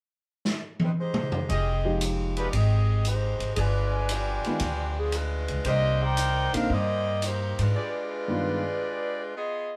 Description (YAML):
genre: jazz, big band swing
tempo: 115 BPM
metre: 4/4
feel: swing 69% on 8ths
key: unclear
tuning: A4 = 441 Hz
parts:
  - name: swinging big-band drum kit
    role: drums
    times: 0.5-7.7 s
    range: hi-hat, kick drum, ride cymbal, snare drum, toms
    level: -35 LUFS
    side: equal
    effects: none
  - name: bright saxophone section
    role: melody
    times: 0.8-9.7 s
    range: F3 to G5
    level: -32 LUFS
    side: equal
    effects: none
  - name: clear trumpet section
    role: stabs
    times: 1.5-9.2 s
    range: Eb4 to Ab5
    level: -36 LUFS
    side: equal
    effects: none
  - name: upright bass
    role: bass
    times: 1.5-7.7 s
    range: F1 to Ab2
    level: -29 LUFS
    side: equal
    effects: none
  - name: clear concert grand piano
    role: accompaniment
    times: 1.8-8.6 s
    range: G2 to G4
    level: -32 LUFS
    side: equal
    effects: none
room: moderate studio ambience, RT60 0.5 s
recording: band playing live in one room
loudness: -27 LUFS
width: mono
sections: 0.0-1.5 A section; 1.5-9.8 B section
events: drum fill 0.4-1.5; break 7.7-9.8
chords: 0.0 G(#5, no3); 1.5 Fm9; 3.6 G7b9; 5.7 Cm9; 7.7 G7b9b13